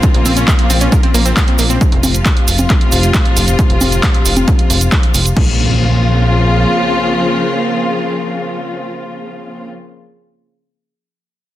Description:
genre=uplifting trance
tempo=135 BPM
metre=4/4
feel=straight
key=Bb harmonic minor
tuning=A4 = 441 Hz
part: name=warm studio string section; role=sustained chords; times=0.0-9.7 s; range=A2 to F4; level=-17 LUFS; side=left 1 dB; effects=sidechain pumping
part: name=electronic kick drum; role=drums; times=0.0-5.5 s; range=none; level=-13 LUFS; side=equal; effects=overdrive, small room reverb
part: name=punchy analog drum machine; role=drums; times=0.0-5.5 s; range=congas, crash cymbal, handclaps, hi-hat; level=-18 LUFS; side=right 1 dB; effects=small room reverb
part: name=cabasa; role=percussion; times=0.0-5.3 s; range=none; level=-23 LUFS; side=right 6 dB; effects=none
part: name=impact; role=sound effects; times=0.0, 5.5-10.2 s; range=none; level=-22 LUFS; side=equal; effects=none
part: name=wide unison pluck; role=arpeggios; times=0.1-1.8 s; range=Bb3 to Bb4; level=-20 LUFS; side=right 1 dB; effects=sidechain pumping, tape echo
part: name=plucky analog bass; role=bass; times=0.1-6.7 s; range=F1 to Bb1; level=-14 LUFS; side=equal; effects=sidechain pumping
room=light reverb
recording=dense, heavily limited modern master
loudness=-10 LUFS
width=side -14 dB against mid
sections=0.0-5.4 A section; 5.4-8.9 B section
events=none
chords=0.0 Bbmadd9; 1.8 F; 5.4 Bbmadd9

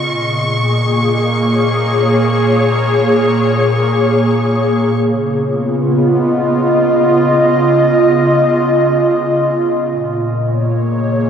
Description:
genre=ambient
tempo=74 BPM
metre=3/4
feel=straight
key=Db mixolydian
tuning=A4 = 438 Hz
part: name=airy breathy pad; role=sustained chords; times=0.0-11.3 s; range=Bb2 to Eb5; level=-12 LUFS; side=equal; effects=chorus
part: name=dark symphonic violin section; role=texture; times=0.0-4.9 s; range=Db6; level=-22 LUFS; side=equal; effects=none
room=wet cathedral reverb, RT60 6.2 s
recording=in a vast, echoing space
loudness=-11 LUFS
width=side -8 dB against mid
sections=0.0-4.9 A section; 4.9-11.3 B section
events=none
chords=0.0 Bbm7; 4.9 Db9; 9.8 Bbm7

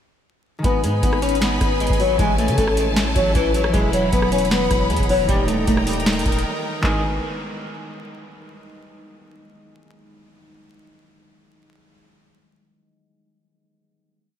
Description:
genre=hip hop, trap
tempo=155 BPM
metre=4/4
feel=half-time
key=unclear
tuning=A4 = 440 Hz
part: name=flamenco guitar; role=melody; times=0.6-7.0 s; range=D#3 to C#4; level=-21 LUFS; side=left 1 dB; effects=analog chorus
part: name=concert harp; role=accompaniment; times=0.6-7.0 s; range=D#3 to E4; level=-27 LUFS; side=equal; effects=none
part: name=clear symphonic string section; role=sustained chords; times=0.6-7.0 s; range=B3 to B5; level=-28 LUFS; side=left 1 dB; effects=none
part: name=long sustained 808-style bass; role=bass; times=0.6-7.2 s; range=D#1 to C#3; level=-24 LUFS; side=equal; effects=none
part: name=booming analog drum machine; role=drums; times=0.6-6.9 s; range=handclaps, hi-hat, kick drum, rim click, snare drum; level=-23 LUFS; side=equal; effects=none
room=moderate huge ambient reverb, RT60 4.6 s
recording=dreamy mix soaked in reverb, vinyl crackle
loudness=-17 LUFS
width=side -9 dB against mid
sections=0.6-6.8 hook; 6.8-8.4 final chord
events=break 6.4-6.8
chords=0.6 G#m; 2.2 Amaj7; 3.7 Esus2; 5.3 D#; 6.8 G#m

